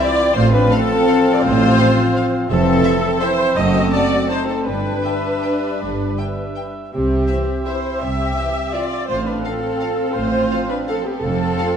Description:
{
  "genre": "classical, orchestral ballroom waltz",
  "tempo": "151-184 BPM",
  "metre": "3/4",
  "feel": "rubato",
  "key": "unclear",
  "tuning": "A4 = 444 Hz",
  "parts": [
    { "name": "clear studio violin section", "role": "melody", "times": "0.0-11.7 s", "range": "E5 to A5", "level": "-32 LUFS", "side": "left 5 dB", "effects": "none" },
    { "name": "flute section", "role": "second line", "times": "0.0-11.8 s", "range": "G4 to E5", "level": "-26 LUFS", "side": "left 4 dB", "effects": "none" },
    { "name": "rich studio violin section", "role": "second line", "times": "0.0-11.8 s", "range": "B3 to G4", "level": "-26 LUFS", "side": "left 2 dB", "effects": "none" },
    { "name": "warm clarinet", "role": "second line", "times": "0.0-11.8 s", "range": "C4 to E4", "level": "-27 LUFS", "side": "equal", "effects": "none" },
    { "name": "warm cor anglais", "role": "second line", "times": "0.0-11.8 s", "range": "D5 to A5", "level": "-29 LUFS", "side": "equal", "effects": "none" },
    { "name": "warm studio viola section", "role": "accompaniment", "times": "0.0-11.8 s", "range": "G4 to E5", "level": "-21 LUFS", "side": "right 1 dB", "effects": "none" },
    { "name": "mellow French horn section", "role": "sustained chords", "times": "0.0-11.7 s", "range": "E3 to D4", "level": "-24 LUFS", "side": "left 4 dB", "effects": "none" },
    { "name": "rich studio cello section", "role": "bass", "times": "0.4-11.5 s", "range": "F2 to C3", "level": "-24 LUFS", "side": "right 2 dB", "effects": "none" },
    { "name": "rich studio double bass section", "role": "bass", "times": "0.4-11.5 s", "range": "F1 to C2", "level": "-23 LUFS", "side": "right 3 dB", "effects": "none" }
  ],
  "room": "moderate scoring stage reverb, RT60 1.6 s",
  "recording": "dark, warm production",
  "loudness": "-15 LUFS",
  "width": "side -8 dB against mid",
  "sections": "0.0-11.8 A section",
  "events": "none",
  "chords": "0.4 F/A; 2.5 Fmaj7; 3.6 F#dim7; 4.7 G; 6.9 C; 9.1 F/A; 11.2 F",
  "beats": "0.00 | 0.36 0.72 1.09 | 1.44 1.79 2.16 | 2.50 2.85 3.22 | 3.56 3.92 4.30 | 4.66 5.04 5.43 | 5.81 6.18 6.57 | 6.94 7.30 7.67 | 8.03 8.38 8.75 | 9.10 9.45 9.81 | 10.16 10.51 10.88 | 11.23 11.59"
}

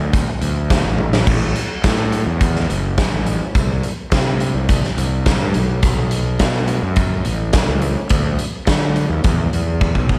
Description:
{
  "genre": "quiet-loud alternative rock",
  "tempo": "105 BPM",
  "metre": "4/4",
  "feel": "straight",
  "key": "unclear",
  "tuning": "A4 = 441 Hz",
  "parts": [
    { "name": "fuzz fingered electric bass", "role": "bass", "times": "0.0-10.2 s", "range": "F#1 to D3", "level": "-22 LUFS", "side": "equal", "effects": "overdrive" },
    { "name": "big rock drum kit", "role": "drums", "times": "0.1-10.2 s", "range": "crash cymbal, hi-hat, kick drum, snare drum, toms", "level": "-20 LUFS", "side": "equal", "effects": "none" }
  ],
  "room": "light reverb",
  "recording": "vinyl crackle",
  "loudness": "-18 LUFS",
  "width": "mono",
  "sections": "0.0-10.2 A section",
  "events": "drum fill 1.0, 9.8-10.2",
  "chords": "none",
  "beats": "0.14 0.71 | 1.28 1.84 2.41 2.98 | 3.55 4.12 4.69 5.26 | 5.83 6.40 6.97 7.54 | 8.11 8.68 9.24 9.81"
}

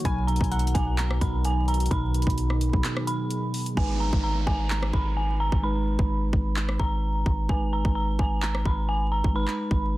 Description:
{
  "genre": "hip hop, trap",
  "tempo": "129 BPM",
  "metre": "4/4",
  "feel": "half-time",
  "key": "unclear",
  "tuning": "A4 = 440 Hz",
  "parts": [
    { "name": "mellow tine electric piano", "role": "accompaniment", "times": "0.0-10.0 s", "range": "B2 to Cb5", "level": "-31 LUFS", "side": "right 1 dB", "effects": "medium stereo tremolo, low-pass filter" },
    { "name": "deep dark ambient pad", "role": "sustained chords", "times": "0.0-3.8 s", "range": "D#3 to Ab4", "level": "-35 LUFS", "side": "equal", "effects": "chorus, built-in reverb" },
    { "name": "trap drum kit", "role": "drums", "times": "0.0-9.8 s", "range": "handclaps, hi-hat, kick drum, rim click", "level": "-27 LUFS", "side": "equal", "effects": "overdrive" },
    { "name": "dark detuned synth bell", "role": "melody", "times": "0.1-10.0 s", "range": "Ab5 to B5", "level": "-31 LUFS", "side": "right 2 dB", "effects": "chorus, low-pass filter, digital delay" },
    { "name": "soft round pluck", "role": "second line", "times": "0.1-1.4 s", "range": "F#5 to Ab5", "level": "-37 LUFS", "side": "left 4 dB", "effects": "chorus, digital delay" },
    { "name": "long sustained 808-style bass", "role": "bass", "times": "0.1-10.0 s", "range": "Ab1 to B1", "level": "-26 LUFS", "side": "equal", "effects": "none" },
    { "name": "downlifter", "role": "sound effects", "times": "3.8-7.5 s", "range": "none", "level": "-39 LUFS", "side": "right 2 dB", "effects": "none" }
  ],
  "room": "digital ambience",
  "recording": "dense, heavily limited modern master, vinyl crackle",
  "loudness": "-23 LUFS",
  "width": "side -17 dB against mid",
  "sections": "0.0-3.8 A section; 3.8-10.0 B section",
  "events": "break 2.8-3.8; hi-hats muted 3.8-10.0",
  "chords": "0.1 B; 3.8 Abm",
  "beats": "| 0.05 0.52 0.98 1.45 | 1.91 2.38 2.84 3.31 | 3.77 4.24 4.70 5.17 | 5.63 6.10 6.56 7.03 | 7.49 7.96 8.42 8.89 | 9.35 9.82"
}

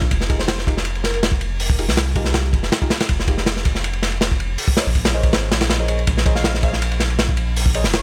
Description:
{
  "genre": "drum and bass, jungle",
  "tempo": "161 BPM",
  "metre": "4/4",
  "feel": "straight",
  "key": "F minor",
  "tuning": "A4 = 441 Hz",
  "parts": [
    { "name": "deep mellow chord stab", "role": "stabs", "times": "0.0-7.8 s", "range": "Eb4 to Eb5", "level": "-31 LUFS", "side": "equal", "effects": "chorus, dub echo" },
    { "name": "soft dub sub bass", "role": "bass", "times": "0.0-8.0 s", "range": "F1 to C2", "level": "-24 LUFS", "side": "equal", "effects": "tube saturation" },
    { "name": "crunchy breakbeat drum kit", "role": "drums", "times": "0.0-8.0 s", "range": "hi-hat, kick drum, ride cymbal, snare drum", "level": "-21 LUFS", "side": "equal", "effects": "none" },
    { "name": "plucky unison lead", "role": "melody", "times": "0.4-1.2, 6.4-8.0 s", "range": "Bb4 to F5", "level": "-33 LUFS", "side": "equal", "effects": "lush chorus, dub echo" }
  ],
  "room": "small room reverb",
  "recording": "none",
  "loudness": "-19 LUFS",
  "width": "mono",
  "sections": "0.0-8.0 A section",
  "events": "none",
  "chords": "0.1 Fm11; 4.6 Bbm11",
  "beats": "| 0.11 0.48 0.86 1.23 | 1.60 1.97 2.35 2.72 | 3.09 3.46 3.84 4.21 | 4.58 4.96 5.33 5.70 | 6.07 6.45 6.82 7.19 | 7.56 7.94"
}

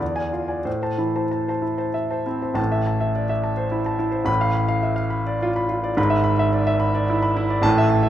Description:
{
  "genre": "classical, romantic character piece for solo piano",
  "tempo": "89-114 BPM",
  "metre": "3/4",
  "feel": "rubato",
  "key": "A minor",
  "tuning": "A4 = 439 Hz",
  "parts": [
    { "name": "clear concert grand piano", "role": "solo", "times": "0.0-8.1 s", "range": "G#1 to B5", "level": "-19 LUFS", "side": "equal", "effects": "none" }
  ],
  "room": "light reverb",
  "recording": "close, detailed microphones",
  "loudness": "-19 LUFS",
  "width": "side -11 dB against mid",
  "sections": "0.0-2.6 A section; 2.6-8.1 B section",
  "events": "none",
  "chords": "0.0 E7b9; 0.7 Am; 4.3 Bm7b5/A; 6.0 E7/G#",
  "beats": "0.01 | 0.66 1.31 1.94 | 2.58 3.17 3.73 | 4.29 4.85 5.43 | 5.98 6.54 7.10 | 7.64"
}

